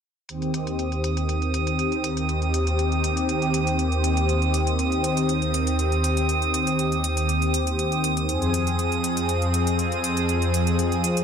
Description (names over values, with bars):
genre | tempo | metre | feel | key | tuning
progressive house | 120 BPM | 4/4 | straight | Eb major | A4 = 440 Hz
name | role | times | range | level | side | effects
warm analog pad | sustained chords | 0.3-11.2 s | Eb2 to Ab4 | -22 LUFS | equal | chorus
electronic hi-hat | drums | 0.3-11.2 s | none | -32 LUFS | equal | low-pass filter on hats, small room ambience
drifting glass-harmonics texture | texture | 0.7-11.2 s | Eb6 | -29 LUFS | right 6 dB | chorus, built-in reverb
room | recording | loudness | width
light reverb, digital ambience | none | -21 LUFS | side -7 dB against mid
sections
0.3-11.2 A section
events
none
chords
0.3 Eb6; 8.3 Fm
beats
| 0.29 0.79 1.29 1.79 | 2.29 2.79 3.29 3.79 | 4.29 4.79 5.29 5.79 | 6.29 6.79 7.29 7.79 | 8.29 8.79 9.29 9.79 | 10.29 10.79